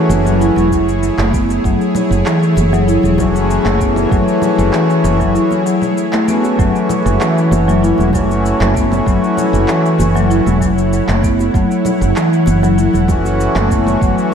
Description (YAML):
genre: organic downtempo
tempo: 97 BPM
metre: 4/4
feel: straight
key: F# minor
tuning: A4 = 440 Hz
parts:
  - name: hand-pumped harmonium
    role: accompaniment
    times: 0.0-14.3 s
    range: E3 to F#4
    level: -19 LUFS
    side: equal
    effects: sidechain pumping, diffuse ambient delay
  - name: bowed-like drone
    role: sustained chords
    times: 0.0-14.3 s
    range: A3 to F#5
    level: -19 LUFS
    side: equal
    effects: built-in reverb, sidechain pumping
  - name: marimba with soft mallets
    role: arpeggios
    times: 0.0-14.3 s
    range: E3 to E4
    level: -16 LUFS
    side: left 1 dB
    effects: low-pass filter, diffuse ambient delay
  - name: woody fretless electric bass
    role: bass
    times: 0.1-14.1 s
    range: E1 to F#1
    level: -16 LUFS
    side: right 1 dB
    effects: sidechain pumping
  - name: electronic cabasa, handclaps and congas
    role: drums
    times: 0.1-14.3 s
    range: none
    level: -25 LUFS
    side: right 1 dB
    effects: none
  - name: bongos and congas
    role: percussion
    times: 0.1-14.3 s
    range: none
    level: -28 LUFS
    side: left 2 dB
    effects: none
  - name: electronic kick drum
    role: drums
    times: 0.7-14.1 s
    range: none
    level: -18 LUFS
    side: right 1 dB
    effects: none
room: wet lush hall reverb, RT60 2.0 s, digital ambience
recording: dreamy mix soaked in reverb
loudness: -11 LUFS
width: side -7 dB against mid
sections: 0.0-14.3 A section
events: none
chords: 0.0 F#m7